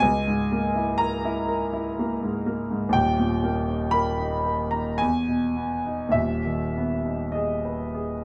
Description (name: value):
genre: classical, romantic nocturne for solo piano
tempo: 49-63 BPM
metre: 3/4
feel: rubato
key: G# minor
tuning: A4 = 438 Hz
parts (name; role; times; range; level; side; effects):
- warm grand piano; solo; 0.0-8.2 s; D#1 to B5; -25 LUFS; equal; none
room: light reverb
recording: close, detailed microphones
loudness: -25 LUFS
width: mono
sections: 0.0-8.2 A section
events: none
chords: 0.0 A#m7b5/C#; 2.9 D#; 5.0 Emaj7